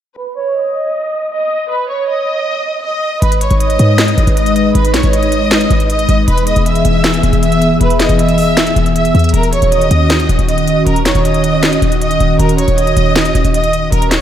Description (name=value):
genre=hip hop, trap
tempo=157 BPM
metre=4/4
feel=half-time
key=unclear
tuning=A4 = 440 Hz
part: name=warm symphonic violin section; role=melody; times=0.2-14.2 s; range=Bb4 to E6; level=-17 LUFS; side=right 1 dB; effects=low-pass filter, analog delay
part: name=hollow clarinet-like synth lead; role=second line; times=0.4-14.2 s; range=C#5 to E5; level=-20 LUFS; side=right 3 dB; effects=chorus, analog delay
part: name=airy breathy pad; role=sustained chords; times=3.5-14.2 s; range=Eb3 to Cb5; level=-15 LUFS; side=left 1 dB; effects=chorus
part: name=short 808-style bass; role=bass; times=3.2-14.2 s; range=Eb1 to Ab2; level=-14 LUFS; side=equal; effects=none
part: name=trap drum kit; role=drums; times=3.2-14.2 s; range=handclaps, hi-hat, snare drum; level=-18 LUFS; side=equal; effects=none
room=moderate lush hall reverb, RT60 1.6 s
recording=dreamy mix soaked in reverb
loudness=-10 LUFS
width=side -10 dB against mid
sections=0.2-3.2 A section; 3.2-14.2 B section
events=filter sweep on violin section 0.2-3.2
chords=0.2 Badd9; 3.2 Abm; 6.3 E; 9.3 Ebm7